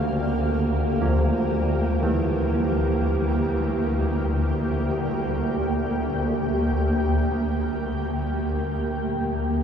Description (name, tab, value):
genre	dark ambient drone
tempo	free time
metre	none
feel	none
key	unclear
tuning	A4 = 439 Hz
part	granular cloud pad	sustained chords	0.0-9.6 s	Bb3 to G5	-25 LUFS	equal	built-in reverb
part	carillon bells	arpeggios	0.0-8.0 s	C#3 to F3	-31 LUFS	right 1 dB	diffuse ambient delay
part	swarming drone	drone	0.0-9.6 s	D2	-24 LUFS	equal	built-in reverb
room	wet cathedral reverb, RT60 5.5 s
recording	dark, warm production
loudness	-22 LUFS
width	side -8 dB against mid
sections	0.0-9.5 A section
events	none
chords	0.0 Gm7